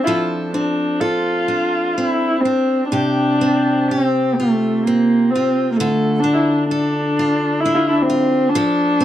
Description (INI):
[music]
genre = celtic folk, Celtic slow air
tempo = 64 BPM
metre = 3/4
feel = rubato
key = unclear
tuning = A4 = 440 Hz
[part]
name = dark viola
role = melody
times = 0.0-9.0 s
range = A3 to F4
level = -16 LUFS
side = equal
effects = none
[part]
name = picked steel-string acoustic guitar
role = accompaniment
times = 0.0-9.0 s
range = C3 to A4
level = -20 LUFS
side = equal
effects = none
[sound]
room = moderate small room ambience, RT60 0.5 s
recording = dark, warm production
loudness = -15 LUFS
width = side -12 dB against mid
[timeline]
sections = 0.0-9.0 A section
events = none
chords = 0.0 Dm7/F; 2.9 Csus4; 5.8 Dm; 8.5 F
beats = | 0.08 1.02 1.97 | 2.92 3.89 4.86 | 5.78 6.69 7.60 | 8.51